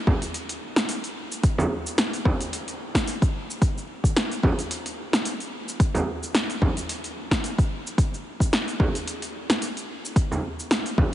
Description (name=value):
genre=downtempo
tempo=110 BPM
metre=4/4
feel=swing 55% on 16ths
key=none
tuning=none
part: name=electronic kick drum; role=drums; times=0.1-11.1 s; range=none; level=-22 LUFS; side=equal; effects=overdrive
part: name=frame drum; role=percussion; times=0.1-11.1 s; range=none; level=-29 LUFS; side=right 2 dB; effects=none
part: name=deep house drum kit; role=drums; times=0.2-11.0 s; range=cabasa, hi-hat, snare drum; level=-27 LUFS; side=equal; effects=overdrive
room=light reverb, digital ambience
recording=heavily compressed radio sound, nothing above 10.4 kHz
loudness=-23 LUFS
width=side -13 dB against mid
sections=0.0-11.1 A section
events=none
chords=none